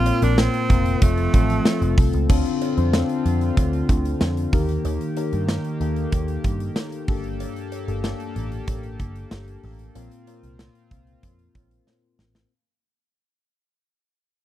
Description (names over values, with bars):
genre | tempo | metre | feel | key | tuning
1980s-style pop | 94 BPM | 4/4 | straight | unclear | A4 = 435 Hz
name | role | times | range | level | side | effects
edgy tenor saxophone | melody | 0.0-1.9 s | A3 to F4 | -26 LUFS | right 4 dB | slapback echo
mellow tine electric piano | accompaniment | 0.0-12.5 s | G2 to C5 | -26 LUFS | left 6 dB | phaser
chorused pulse-width pad | sustained chords | 0.0-12.5 s | D3 to A4 | -30 LUFS | right 3 dB | none
vintage muted picked electric bass | bass | 0.0-12.4 s | F1 to G2 | -24 LUFS | right 1 dB | none
big rock drum kit | drums | 0.1-12.5 s | crash cymbal, hi-hat, kick drum, snare drum, tambourine | -21 LUFS | equal | none
cowbell | percussion | 0.1-12.0 s | none | -40 LUFS | right 21 dB | none
room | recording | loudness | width
little or no reverb | dry, close 1970s-style studio recording | -19 LUFS | side -13 dB against mid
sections
0.0-2.3 A section; 2.3-12.5 B section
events
fade-out 2.3-12.5; drum fill 11.9-12.5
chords
0.0 Bbsus2; 1.0 F; 2.3 Dm7; 4.5 Eb; 7.1 Gmadd9; 10.0 Bbsus2